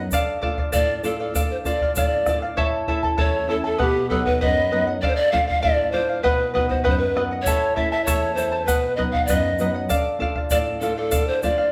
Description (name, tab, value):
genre	andean folk, Andean ensemble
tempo	98 BPM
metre	2/4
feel	straight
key	unclear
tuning	A4 = 440 Hz
part	charango	accompaniment	0.0-11.7 s	E4 to A5	-27 LUFS	equal	none
part	nylon-string guitar	accompaniment	0.0-11.7 s	E2 to F#4	-30 LUFS	equal	none
part	bombo	percussion	0.1-11.6 s	none	-28 LUFS	equal	none
part	tube shaker	percussion	0.1-2.4, 7.5-11.6 s	none	-36 LUFS	equal	none
part	breathy reedy pan flute	melody	0.7-11.7 s	G4 to F5	-24 LUFS	equal	none
room	wet large studio reverb, RT60 1.1 s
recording	band playing live in one room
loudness	-21 LUFS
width	mono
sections	0.0-2.6 A section; 2.6-11.7 A section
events	none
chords	0.1 Dm; 2.6 A; 3.8 B; 5.0 Dm; 6.2 B; 7.5 A; 8.7 B; 9.9 Dm